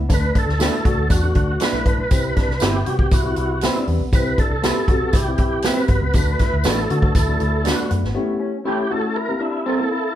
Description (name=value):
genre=uptempo 1960s-style soul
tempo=119 BPM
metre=4/4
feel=straight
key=D mixolydian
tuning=A4 = 439 Hz
part: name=vintage muted picked electric bass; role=bass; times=0.0-8.1 s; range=G1 to D3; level=-23 LUFS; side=equal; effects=none
part: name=overdriven tonewheel organ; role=melody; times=0.1-10.1 s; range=E4 to B4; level=-24 LUFS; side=right 1 dB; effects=chorus vibrato, fast rotary speaker
part: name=dark upright piano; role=accompaniment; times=0.1-10.0 s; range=G3 to Bb4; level=-26 LUFS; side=left 4 dB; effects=none
part: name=electric guitar through a small old amp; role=riff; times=0.1-10.1 s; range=B3 to F#4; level=-28 LUFS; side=left 1 dB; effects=none
part: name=swinging big-band drum kit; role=drums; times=0.1-8.1 s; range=hi-hat, kick drum, snare drum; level=-19 LUFS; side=equal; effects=none
part: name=tambourine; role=percussion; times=0.1-7.8 s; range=none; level=-34 LUFS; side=right 5 dB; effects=none
part: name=electric guitar through a small old amp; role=stabs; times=0.6-9.8 s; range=C4 to B4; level=-27 LUFS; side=right 4 dB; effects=none
room=moderate studio reverb, RT60 0.8 s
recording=band playing live in one room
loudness=-17 LUFS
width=side -12 dB against mid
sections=0.0-10.2 A section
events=tonewheel organ solo 0.0-10.2; break 8.2-10.2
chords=0.0 D6; 2.1 Cmaj7; 6.1 D6; 8.2 A7; 9.2 C7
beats=| 0.09 0.60 1.10 1.61 | 2.11 2.62 3.12 3.62 | 4.13 4.63 5.14 5.64 | 6.14 6.65 7.15 7.65 | 8.16 8.66 9.16 9.66